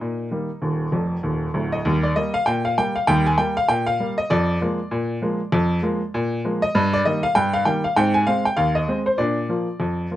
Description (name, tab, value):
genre	ragtime piano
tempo	98 BPM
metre	2/4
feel	swing 60% on 16ths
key	Eb major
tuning	A4 = 441 Hz
part	clear upright piano	solo	0.0-10.2 s	D1 to Ab5	-19 LUFS	equal	none
room	light reverb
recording	dark, warm production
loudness	-19 LUFS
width	side -13 dB against mid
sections	0.0-1.8 A section; 1.8-10.2 B section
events	upright piano fill 0.9-1.8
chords	0.0 Eb5; 1.8 Eb; 4.3 Bb7/F; 6.7 Eb/G; 8.0 Ab; 9.2 Bb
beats	0.00 | 0.61 1.23 | 1.85 2.46 | 3.07 3.68 | 4.29 4.91 | 5.51 6.12 | 6.74 7.34 | 7.96 8.57 | 9.18 9.80